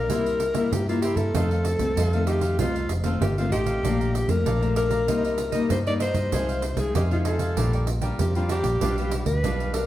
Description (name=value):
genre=samba and choro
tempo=96 BPM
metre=4/4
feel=straight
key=Bb major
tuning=A4 = 440 Hz
part: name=breathy alto saxophone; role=melody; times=0.0-9.9 s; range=F4 to D5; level=-27 LUFS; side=left 1 dB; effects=none
part: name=cavaquinho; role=accompaniment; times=0.0-9.9 s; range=D4 to Bb5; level=-34 LUFS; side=right 3 dB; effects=none
part: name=nylon-string guitar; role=accompaniment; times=0.0-9.9 s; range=F2 to F4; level=-29 LUFS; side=left 4 dB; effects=none
part: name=vintage muted fingered electric bass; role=bass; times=0.0-9.9 s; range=F1 to G2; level=-26 LUFS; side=equal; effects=none
part: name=pandeiro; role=percussion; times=0.1-9.9 s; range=none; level=-31 LUFS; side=right 4 dB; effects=none
room=wet large studio reverb, RT60 1.2 s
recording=heard from further back in the room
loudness=-21 LUFS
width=side -13 dB against mid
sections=0.0-9.9 A section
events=none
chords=0.1 C7; 1.3 F7; 3.8 Bbmaj7; 5.1 Cm7; 6.3 Fm7/C; 7.6 Bb6; 8.8 G7/B